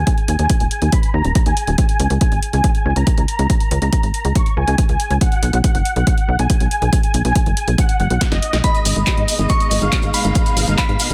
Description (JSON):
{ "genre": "uplifting trance", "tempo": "140 BPM", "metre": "4/4", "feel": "straight", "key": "G# dorian", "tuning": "A4 = 440 Hz", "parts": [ { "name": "supersaw chords", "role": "melody", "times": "0.0-11.1 s", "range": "D#5 to C#6", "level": "-25 LUFS", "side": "equal", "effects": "ensemble chorus, sidechain pumping, low-pass filter, delay" }, { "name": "tight sequencer bass", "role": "bass", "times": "0.0-11.1 s", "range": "D#1 to G#2", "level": "-20 LUFS", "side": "equal", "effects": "sidechain pumping" }, { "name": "electronic kick drum", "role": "drums", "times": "0.1-10.9 s", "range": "none", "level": "-19 LUFS", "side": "equal", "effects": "none" }, { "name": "punchy analog drum machine", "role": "drums", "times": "0.1-11.1 s", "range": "handclaps, hi-hat, snare drum", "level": "-27 LUFS", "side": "equal", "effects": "none" }, { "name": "glassy synth bell", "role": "second line", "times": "8.6-11.1 s", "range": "B5 to C#6", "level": "-26 LUFS", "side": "equal", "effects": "chorus, tremolo, tape echo" }, { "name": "bright studio string section", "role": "sustained chords", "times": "8.6-11.1 s", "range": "B2 to D#4", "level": "-28 LUFS", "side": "equal", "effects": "sidechain pumping" }, { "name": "cabasa", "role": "percussion", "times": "8.6-11.1 s", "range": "none", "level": "-31 LUFS", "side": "equal", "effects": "none" } ], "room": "little or no reverb", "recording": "none", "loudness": "-17 LUFS", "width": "mono", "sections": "0.0-11.1 A section", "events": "drum fill 8.2-8.6", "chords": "0.0 D#sus4; 1.8 C#5; 5.2 B5; 8.6 G#madd9" }